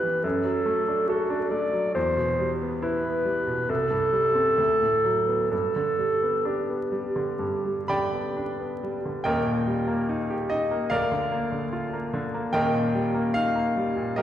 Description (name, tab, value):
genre	classical, romantic duo for clarinet and grand piano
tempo	61-75 BPM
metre	4/4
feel	rubato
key	G major, Eb major from 9.3 s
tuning	A4 = 441 Hz
part	mellow clarinet	melody	0.0-8.8 s	F#4 to D5	-24 LUFS	right 1 dB	none
part	bright grand piano	accompaniment	0.0-14.2 s	Eb1 to B5	-26 LUFS	equal	none
room	wet scoring stage reverb, RT60 1.5 s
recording	heard from further back in the room, vinyl crackle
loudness	-23 LUFS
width	side -11 dB against mid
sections	0.0-9.3 A section; 9.3-14.2 B section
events	none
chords	0.2 D/F#; 2.0 Em; 3.7 Am7/C; 4.6 D6; 5.5 G; 9.3 Eb; 10.9 Bb/D; 12.5 Eb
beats	0.24 1.09 | 1.95 2.82 3.69 4.59 | 5.52 6.47 7.42 8.37 | 9.26 10.10 10.92 11.73 | 12.55 13.36 14.17